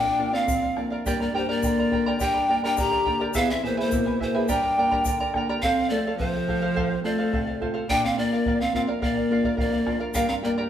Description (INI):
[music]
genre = andean folk, Andean ensemble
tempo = 106 BPM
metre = 2/4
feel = straight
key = G dorian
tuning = A4 = 440 Hz
[part]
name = breathy pan flute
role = melody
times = 0.0-10.5 s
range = C5 to Bb5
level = -26 LUFS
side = equal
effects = none
[part]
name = dark viola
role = second line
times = 0.0-10.6 s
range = F3 to G4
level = -26 LUFS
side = left 2 dB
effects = none
[part]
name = charango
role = accompaniment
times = 0.0-10.7 s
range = E4 to Bb5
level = -30 LUFS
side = right 2 dB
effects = none
[part]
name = nylon-string guitar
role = accompaniment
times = 0.0-10.7 s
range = E2 to G#4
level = -32 LUFS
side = right 1 dB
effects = none
[part]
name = bombo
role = percussion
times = 0.5-10.3 s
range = none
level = -33 LUFS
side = equal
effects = none
[part]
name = tube shaker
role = percussion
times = 0.5-5.2, 10.1-10.3 s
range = none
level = -38 LUFS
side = left 5 dB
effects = none
[sound]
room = wet large studio reverb, RT60 1.1 s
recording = band playing live in one room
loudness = -21 LUFS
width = side -10 dB against mid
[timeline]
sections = 0.0-5.6 A section; 5.6-10.7 A section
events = none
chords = 0.0 Bb; 1.1 Gm; 3.3 E; 4.5 Gm; 5.6 F; 7.9 Bb; 10.1 Gm